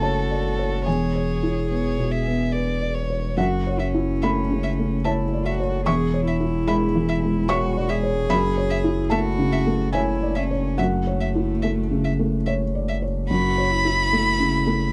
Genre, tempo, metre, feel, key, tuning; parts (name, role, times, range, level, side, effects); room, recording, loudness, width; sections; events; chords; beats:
neoclassical piano and strings; 72 BPM; 3/4; rubato; F# minor; A4 = 440 Hz
warm violin; melody; 0.0-14.9 s; A4 to B5; -29 LUFS; equal
warm cello; second line; 0.0-14.9 s; A3 to G#4; -31 LUFS; equal
felt-muted upright piano; accompaniment; 0.0-14.9 s; E2 to C#6; -25 LUFS; equal
saturated sub bass; bass; 0.0-14.9 s; E1 to F#1; -29 LUFS; equal
studio reverb; dry, close 1970s-style studio recording; -22 LUFS; mono
0.0-13.3 A section; 13.3-14.9 B section
0.0 F#m7; 0.9 E6; 3.4 F#m7; 5.9 C#m/E; 8.3 F#m7
0.03 | 0.86 1.70 2.54 | 3.38 4.22 5.05 | 5.87 6.68 7.49 | 8.30 9.12 9.94 | 10.78 11.62 12.46 | 13.30 14.12